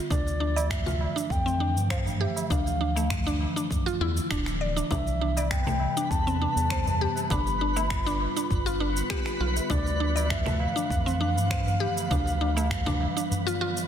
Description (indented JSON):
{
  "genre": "organic downtempo",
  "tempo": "100 BPM",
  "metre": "4/4",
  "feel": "straight",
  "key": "D dorian",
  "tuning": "A4 = 442 Hz",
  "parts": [
    { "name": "warbly tape-like pad", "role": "sustained chords", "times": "0.0-13.9 s", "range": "C3 to F4", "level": "-34 LUFS", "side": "equal", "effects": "chorus, built-in reverb, sidechain pumping" },
    { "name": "bansuri", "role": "melody", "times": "0.1-13.9 s", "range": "D5 to B5", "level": "-31 LUFS", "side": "equal", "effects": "ping-pong delay" },
    { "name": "mallet-like synth pluck", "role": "arpeggios", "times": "0.1-13.8 s", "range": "A3 to D5", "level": "-31 LUFS", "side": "equal", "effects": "chorus, cassette tape, ping-pong delay" },
    { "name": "round analog bass", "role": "bass", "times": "0.1-13.1 s", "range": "D1 to G2", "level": "-28 LUFS", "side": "equal", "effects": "none" },
    { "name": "electronic congas, cabasa and finger snaps", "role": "drums", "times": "0.1-13.9 s", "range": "none", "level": "-34 LUFS", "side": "left 1 dB", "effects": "soft clipping on snare" },
    { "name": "electronic kick drum", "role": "drums", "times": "0.1-12.8 s", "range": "none", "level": "-31 LUFS", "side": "equal", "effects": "none" },
    { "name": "tabla", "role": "percussion", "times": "0.4-13.9 s", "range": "none", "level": "-36 LUFS", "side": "right 2 dB", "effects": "none" },
    { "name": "twinkling granular texture", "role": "texture", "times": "5.4-13.9 s", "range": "B3 to B4", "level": "-37 LUFS", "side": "left 1 dB", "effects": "built-in reverb" }
  ],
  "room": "moderate lush hall reverb, RT60 2.0 s",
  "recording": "dense, heavily limited modern master",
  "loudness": "-24 LUFS",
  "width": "side -9 dB against mid",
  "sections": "0.0-13.9 A section",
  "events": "none",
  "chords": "0.1 Dmadd9; 4.9 Cmaj7; 7.3 G7; 9.7 Dmadd9"
}